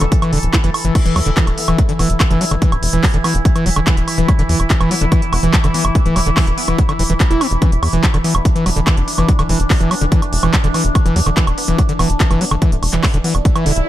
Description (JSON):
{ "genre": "psychedelic trance", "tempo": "144 BPM", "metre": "4/4", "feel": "straight", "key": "unclear", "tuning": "A4 = 440 Hz", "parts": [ { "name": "resonant blip pluck", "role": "second line", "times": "0.0-13.4 s", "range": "A3 to D4", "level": "-35 LUFS", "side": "right 1 dB", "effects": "none" }, { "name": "overtone-sweeping drone", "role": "sustained chords", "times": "0.0-13.9 s", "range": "E3 to A4", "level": "-23 LUFS", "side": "equal", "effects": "chorus, built-in reverb, sidechain pumping" }, { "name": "screaming distorted acid line", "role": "riff", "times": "0.0-13.7 s", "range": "D3 to E4", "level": "-19 LUFS", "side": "equal", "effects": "distortion, chorus, auto-pan, sidechain pumping, digital delay" }, { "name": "tight sequencer bass", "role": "bass", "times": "0.0-13.8 s", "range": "D1 to E2", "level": "-17 LUFS", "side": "equal", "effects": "tube saturation" }, { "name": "techno drum kit", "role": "drums", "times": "0.0-13.8 s", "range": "crash cymbal, handclaps, hi-hat, woodblock", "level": "-21 LUFS", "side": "right 2 dB", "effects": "none" }, { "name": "electronic kick drum", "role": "drums", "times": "0.1-13.5 s", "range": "none", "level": "-14 LUFS", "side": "equal", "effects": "none" }, { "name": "swell", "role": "sound effects", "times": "13.5-13.9 s", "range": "none", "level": "-21 LUFS", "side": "right 3 dB", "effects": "none" } ], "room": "digital ambience", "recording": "none", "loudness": "-12 LUFS", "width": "side -14 dB against mid", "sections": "0.0-13.9 A section", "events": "swell 13.5-13.9", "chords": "0.0 E5", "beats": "0.12 0.54 | 0.95 1.37 1.78 2.20 | 2.62 3.04 3.45 3.87 | 4.29 4.70 5.12 5.54 | 5.95 6.37 6.79 7.20 | 7.62 8.04 8.45 8.87 | 9.29 9.70 10.12 10.54 | 10.95 11.37 11.79 12.20 | 12.62 13.04 13.45 13.87" }